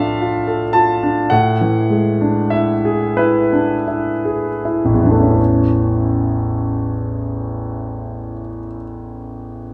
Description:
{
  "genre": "classical, romantic nocturne for solo piano",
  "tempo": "24-40 BPM (dotted quarters)",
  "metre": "6/8",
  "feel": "rubato",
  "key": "A major",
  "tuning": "A4 = 442 Hz",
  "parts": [
    { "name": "clear concert grand piano", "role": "solo", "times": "0.0-9.7 s", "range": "A1 to A5", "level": "-18 LUFS", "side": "equal", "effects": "none" }
  ],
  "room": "moderate recital hall reverb, RT60 1.4 s",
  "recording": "none",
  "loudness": "-17 LUFS",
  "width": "mono",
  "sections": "0.0-5.4 A section; 5.4-9.1 B section",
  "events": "slowing down 0.0-5.4",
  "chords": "0.0 Dm/A; 1.3 E7/A; 5.4 A",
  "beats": "| 1.30 3.17 | 5.38 7.23"
}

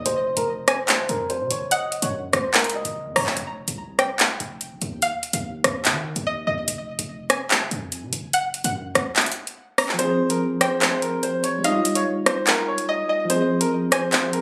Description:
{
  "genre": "hip hop, drill",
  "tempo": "145 BPM",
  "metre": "4/4",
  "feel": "half-time",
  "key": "F minor",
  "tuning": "A4 = 440 Hz",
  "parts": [
    { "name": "bright upright piano", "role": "melody", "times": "0.0-3.4, 10.0-14.4 s", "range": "Bb4 to Eb5", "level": "-27 LUFS", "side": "equal", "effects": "low-pass filter, digital delay" },
    { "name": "string-like resonator pluck", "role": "second line", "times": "0.0-14.4 s", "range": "Eb5 to Bb5", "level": "-30 LUFS", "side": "equal", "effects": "chorus, digital delay" },
    { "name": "hard-hitting 808-style bass", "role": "bass", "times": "0.0-9.2 s", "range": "F1 to Eb3", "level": "-36 LUFS", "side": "equal", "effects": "none" },
    { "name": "drill drum kit", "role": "drums", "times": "0.1-14.4 s", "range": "handclaps, hi-hat, rim click", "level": "-23 LUFS", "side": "equal", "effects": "none" },
    { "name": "tine electric piano", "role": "accompaniment", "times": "9.9-14.4 s", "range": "F3 to Ab4", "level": "-27 LUFS", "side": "equal", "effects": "low-pass filter" }
  ],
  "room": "moderate digital room reverb, RT60 1.1 s, digital ambience",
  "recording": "recorded on a phone in the room, club reverb",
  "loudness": "-23 LUFS",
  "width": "mono",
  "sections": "0.0-14.4 A section",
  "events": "filter sweep 0.0-10.0; kick muted 9.2-10.0, 10.0-14.4",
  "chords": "0.1 Fm; 1.7 Gb5; 3.4 F5; 5.0 Ebsus2; 6.7 Fm; 8.3 Gb5; 10.0 Fm; 11.6 Ebadd9; 13.3 Fm",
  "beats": "| 0.06 0.47 0.89 1.30 | 1.71 2.13 2.54 2.95 | 3.37 3.78 4.20 4.61 | 5.02 5.44 5.85 6.26 | 6.68 7.09 7.51 7.92 | 8.33 8.75 9.16 9.57 | 9.99 10.40 10.82 11.23 | 11.64 12.06 12.47 12.88 | 13.30 13.71 14.13"
}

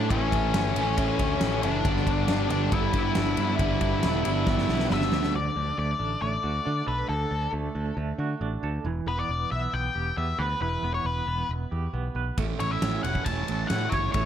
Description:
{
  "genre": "quiet-loud alternative rock",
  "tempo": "137 BPM",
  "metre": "4/4",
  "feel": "straight",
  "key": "unclear",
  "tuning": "A4 = 439 Hz",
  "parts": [
    { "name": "octave-fuzz lead guitar", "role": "melody", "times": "0.0-14.3 s", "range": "C#4 to A5", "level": "-29 LUFS", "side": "left 4 dB", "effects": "distortion" },
    { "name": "distorted electric guitar", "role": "riff", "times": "0.0-5.3 s", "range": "G2 to A3", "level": "-32 LUFS", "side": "left 1 dB", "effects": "distortion" },
    { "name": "fuzz guitar", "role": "riff", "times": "0.0-5.3, 12.4-14.3 s", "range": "G2 to E4", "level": "-32 LUFS", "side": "right 13 dB", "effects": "distortion" },
    { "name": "overdriven electric guitar", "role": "riff", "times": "0.0-5.3 s", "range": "G2 to E4", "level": "-33 LUFS", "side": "left 14 dB", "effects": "none" },
    { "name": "picked electric bass", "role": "bass", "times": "0.0-14.3 s", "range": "E1 to D3", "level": "-30 LUFS", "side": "equal", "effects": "none" },
    { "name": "big rock drum kit", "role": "drums", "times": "0.1-5.3, 12.4-14.3 s", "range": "kick drum, ride cymbal, snare drum", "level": "-29 LUFS", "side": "equal", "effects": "none" },
    { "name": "twangy electric guitar", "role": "arpeggios", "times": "5.3-14.3 s", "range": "D3 to C#5", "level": "-34 LUFS", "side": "right 7 dB", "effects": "tremolo" }
  ],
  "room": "light reverb",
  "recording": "none",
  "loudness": "-24 LUFS",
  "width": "side -9 dB against mid",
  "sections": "0.0-5.3 A section; 5.3-14.3 B section",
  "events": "drum fill 4.5-5.3",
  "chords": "0.0 A; 1.9 G6; 5.3 D; 8.9 Em; 12.4 A",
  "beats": "| 0.11 0.55 0.98 1.42 | 1.85 2.29 2.73 3.16 | 3.60 4.03 4.47 4.91 | 5.34 5.78 6.22 6.66 | 7.10 7.54 7.97 8.41 | 8.86 9.29 9.74 10.18 | 10.62 11.06 11.50 11.94 | 12.38 12.83 13.27 13.71 | 14.15"
}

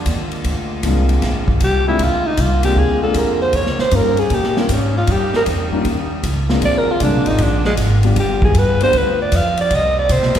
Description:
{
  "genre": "jazz, big band swing",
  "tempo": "156 BPM",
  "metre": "4/4",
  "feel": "swing 66% on 8ths",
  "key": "Bb mixolydian",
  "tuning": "A4 = 438 Hz",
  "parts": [
    { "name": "growling alto saxophone", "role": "melody", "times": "0.0-10.4 s", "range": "Ab3 to F5", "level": "-18 LUFS", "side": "right 1 dB", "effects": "none" },
    { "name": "bright saxophone section", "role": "sustained chords", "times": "0.0-10.4 s", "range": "Db3 to G4", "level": "-27 LUFS", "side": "equal", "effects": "none" },
    { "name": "upright bass", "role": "bass", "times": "0.0-10.4 s", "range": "G1 to C3", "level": "-18 LUFS", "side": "equal", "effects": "none" },
    { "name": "swinging big-band drum kit", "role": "drums", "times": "0.1-10.4 s", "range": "hi-hat, kick drum, ride cymbal, snare drum", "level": "-22 LUFS", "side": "equal", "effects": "none" },
    { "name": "warm grand piano", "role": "accompaniment", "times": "0.8-8.9 s", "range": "G3 to G4", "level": "-23 LUFS", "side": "left 4 dB", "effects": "none" }
  ],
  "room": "wet scoring stage reverb, RT60 1.6 s",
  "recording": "heard from further back in the room",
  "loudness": "-14 LUFS",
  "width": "side -10 dB against mid",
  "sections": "0.0-10.4 A section",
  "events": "alto saxophone solo 0.0-10.4",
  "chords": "0.0 Bb7; 3.5 Eb7; 6.6 Bb7; 8.2 G7; 9.7 Cm7",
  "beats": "0.07 | 0.45 0.84 1.22 1.61 | 2.00 2.38 2.77 3.15 | 3.54 3.92 4.31 4.70 | 5.08 5.47 5.85 6.24 | 6.62 7.01 7.40 7.78 | 8.17 8.55 8.94 9.32 | 9.71 10.10"
}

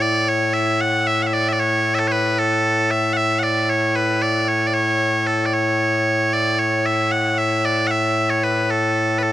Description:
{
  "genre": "scottish traditional, Scottish pipe music",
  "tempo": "76 BPM (dotted quarters)",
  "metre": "6/8",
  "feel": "straight",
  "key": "A major",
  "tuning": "A4 = 440 Hz",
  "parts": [
    { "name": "loud bright bagpipes", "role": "solo", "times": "0.0-9.3 s", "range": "A2 to F#5", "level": "-17 LUFS", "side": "equal", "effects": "none" }
  ],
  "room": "light reverb",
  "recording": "dark, warm production",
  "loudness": "-17 LUFS",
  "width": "side -14 dB against mid",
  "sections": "0.0-9.3 A section",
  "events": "none",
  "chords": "none",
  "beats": "| 0.02 0.81 | 1.59 2.38 | 3.17 3.96 | 4.75 5.54 | 6.33 7.12 | 7.91 8.70"
}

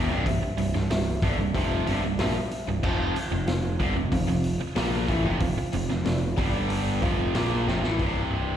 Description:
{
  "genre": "classic rock",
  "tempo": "93 BPM",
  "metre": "4/4",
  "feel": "straight",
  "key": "unclear",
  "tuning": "A4 = 440 Hz",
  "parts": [
    { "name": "mellow reed electric piano", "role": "accompaniment", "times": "0.0-7.8 s", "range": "F4 to G5", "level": "-36 LUFS", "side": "right 2 dB", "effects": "fast tremolo, slapback echo" },
    { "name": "overdriven electric guitar", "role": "riff", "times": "0.0-8.6 s", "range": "C2 to Bb3", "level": "-31 LUFS", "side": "left 11 dB", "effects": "slapback echo" },
    { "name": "tight distorted guitar", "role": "riff", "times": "0.0-8.6 s", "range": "C2 to Bb3", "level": "-30 LUFS", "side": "right 9 dB", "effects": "distortion, slapback echo" },
    { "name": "overdriven picked electric bass", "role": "bass", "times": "0.0-8.6 s", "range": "C1 to Bb1", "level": "-27 LUFS", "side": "equal", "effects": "none" },
    { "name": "vintage drum kit", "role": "drums", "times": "0.3-8.1 s", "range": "crash cymbal, hi-hat, kick drum, snare drum", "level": "-30 LUFS", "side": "equal", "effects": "none" }
  ],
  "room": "little or no reverb",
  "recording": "live gig heard through the venue's PA, recital hall reverb",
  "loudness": "-23 LUFS",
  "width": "side -10 dB against mid",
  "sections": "0.0-8.0 A section",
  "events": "drum fill 7.7-8.0",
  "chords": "0.0 C; 2.8 F5; 6.4 G5; 7.0 F5; 8.0 C5",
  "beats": "| 0.26 0.91 1.55 2.19 | 2.84 3.48 4.12 4.77 | 5.41 6.06 6.70 7.35 | 8.00"
}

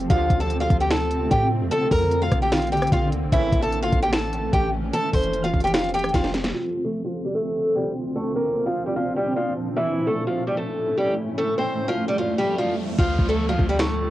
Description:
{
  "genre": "hip hop, trap",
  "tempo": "149 BPM",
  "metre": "4/4",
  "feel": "half-time",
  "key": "D minor",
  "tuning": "A4 = 441 Hz",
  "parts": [
    { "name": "granular cloud pad", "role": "sustained chords", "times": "0.0-14.1 s", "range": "D2 to A4", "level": "-28 LUFS", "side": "equal", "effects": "built-in reverb, low-pass filter, cassette tape" },
    { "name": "clean 808-style bass", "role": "bass", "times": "0.0-6.5, 13.0-14.1 s", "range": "F1 to A2", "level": "-26 LUFS", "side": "equal", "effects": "none" },
    { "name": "trap drum kit", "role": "drums", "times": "0.0-6.5, 13.0-13.9 s", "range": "finger snaps, hi-hat, kick drum, rim click, snare drum", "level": "-23 LUFS", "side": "equal", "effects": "cassette tape" },
    { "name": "picked steel-string acoustic guitar", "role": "melody", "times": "0.1-14.1 s", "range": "E3 to C6", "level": "-23 LUFS", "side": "equal", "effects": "low-pass filter, cassette tape" },
    { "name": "mellow brass ensemble", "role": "stabs", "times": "0.1-0.4, 3.3-3.6 s", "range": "A2 to F3", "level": "-33 LUFS", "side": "right 7 dB", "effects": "cassette tape, analog delay" },
    { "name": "riser and downlifter", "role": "sound effects", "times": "12.3-14.1 s", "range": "none", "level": "-38 LUFS", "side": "equal", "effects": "none" }
  ],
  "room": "light reverb",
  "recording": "home recording on cassette",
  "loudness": "-20 LUFS",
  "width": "side -14 dB against mid",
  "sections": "0.0-6.5 A section; 6.5-13.0 B section; 13.0-14.1 C section",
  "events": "drum fill 6.1-6.5; filter sweep 6.5-13.0; riser 12.3-13.0; hi-hats muted 13.0-14.1",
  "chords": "0.1 Dm7; 1.7 Bbadd9; 3.3 A; 4.9 Fadd9; 6.5 Dm7; 8.2 Bbadd9; 9.8 A; 11.4 Fadd9; 13.0 Dm7",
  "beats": "| 0.10 0.50 0.91 1.31 | 1.71 2.11 2.52 2.92 | 3.32 3.73 4.13 4.53 | 4.93 5.33 5.74 6.14 | 6.54 6.95 7.35 7.75 | 8.15 8.56 8.96 9.36 | 9.77 10.17 10.57 10.97 | 11.38 11.78 12.18 12.58 | 12.99 13.39 13.79"
}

